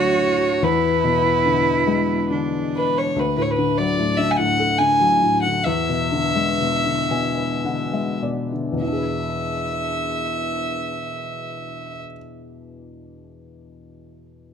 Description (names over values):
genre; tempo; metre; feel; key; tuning
celtic folk, Celtic slow air; 46-75 BPM; 3/4; rubato; E mixolydian; A4 = 438 Hz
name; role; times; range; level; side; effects
warm fiddle; melody; 0.0-12.0 s; B4 to G#5; -21 LUFS; equal; none
clear cello; second line; 0.0-3.1 s; D4 to F#4; -23 LUFS; right 4 dB; none
felt-muted upright piano; accompaniment; 0.0-14.5 s; D2 to G#5; -23 LUFS; left 3 dB; none
room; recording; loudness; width
light reverb; close, detailed microphones; -18 LUFS; side -7 dB against mid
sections
0.0-3.2 A section; 3.2-8.8 B section; 8.8-12.6 C section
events
slowing down 3.2-8.8; felt piano fill 6.6-8.8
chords
0.0 Dmaj7; 0.6 E7; 3.2 D; 5.6 E7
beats
| 0.62 1.44 2.30 | 3.16 3.97 4.79 | 5.65 6.57 7.62 | 8.83 10.11 11.36